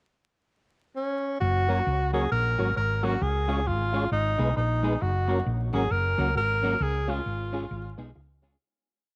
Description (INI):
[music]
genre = ska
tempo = 134 BPM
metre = 4/4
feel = swing 62% on 8ths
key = F# major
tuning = A4 = 439 Hz
[part]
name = breathy tenor saxophone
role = melody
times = 1.0-8.0 s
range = C#4 to A#4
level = -30 LUFS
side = equal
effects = none
[part]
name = hollow-body short-scale fingered electric bass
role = bass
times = 1.4-8.5 s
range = F#1 to C#2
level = -30 LUFS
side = equal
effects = none
[part]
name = semi-hollow electric guitar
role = accompaniment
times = 1.7-8.6 s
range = F#3 to G#4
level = -36 LUFS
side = equal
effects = none
[part]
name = mellow tonewheel organ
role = stabs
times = 1.7-8.5 s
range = B3 to C#5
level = -37 LUFS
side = equal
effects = chorus vibrato
[sound]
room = moderate plate reverb, RT60 3.2 s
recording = vinyl crackle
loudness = -26 LUFS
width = mono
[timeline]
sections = 0.0-1.4 pickup bar; 1.4-8.6 A section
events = fade-out 6.8-8.6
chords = 0.0 N.C.; 1.4 F#; 3.2 C#; 4.1 G#m; 5.0 F#; 6.8 C#; 7.7 G#m; 8.2 C#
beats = 0.07 0.52 0.96 | 1.41 1.86 2.31 2.76 | 3.21 3.66 4.11 4.56 | 5.01 5.46 5.91 6.36 | 6.80 7.25 7.71 8.15